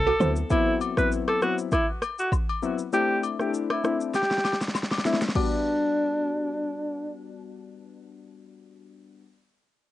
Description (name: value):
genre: afrobeats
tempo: 99 BPM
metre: 4/4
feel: swing 55% on 16ths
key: G major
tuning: A4 = 441 Hz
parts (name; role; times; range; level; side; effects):
- bright alto saxophone; melody; 0.0-7.1 s; D4 to B4; -26 LUFS; equal; low-pass filter, cassette tape, tape echo
- downlifter; sound effects; 0.0-0.5 s; none; barely audible; none; none
- agogo bells and woodblock; percussion; 0.1-5.6 s; none; -34 LUFS; left 6 dB; none
- warm analog keys; accompaniment; 0.2-9.2 s; F#3 to F#4; -30 LUFS; left 6 dB; chorus, low-pass filter, cassette tape
- deep house drum kit; drums; 0.2-5.5 s; crash cymbal, kick drum, rim click, shaker, snare drum; -28 LUFS; equal; cassette tape
room: light reverb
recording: home recording on cassette, nothing above 10.8 kHz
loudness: -23 LUFS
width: side -14 dB against mid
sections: 0.0-5.4 A section; 5.4-7.8 B section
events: filter sweep 0.0-5.4; drum fill 4.1-5.4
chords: 0.2 D13 (rootless); 2.9 C69; 5.4 Gmaj7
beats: | 0.51 1.11 1.72 2.32 | 2.93 3.54 4.14 4.75 | 5.35 5.96 6.57 7.17